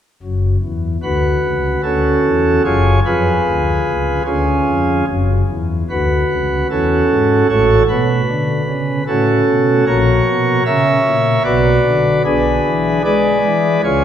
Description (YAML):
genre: classical, chorale-style piece for pipe organ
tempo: 75 BPM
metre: 3/4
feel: rubato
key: F# minor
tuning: A4 = 440 Hz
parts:
  - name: pipe organ, sparkling flutes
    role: solo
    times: 0.2-14.0 s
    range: F#1 to E5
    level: -13 LUFS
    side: equal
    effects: none
room: wet church reverb, RT60 2.7 s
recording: none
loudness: -13 LUFS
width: side -9 dB against mid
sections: 0.2-14.0 A section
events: none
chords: 0.2 F#m; 2.6 C#7/F#; 5.1 F#m; 7.5 F#m/A; 9.9 F#7/A#; 11.4 Bm; 12.2 G#dim/B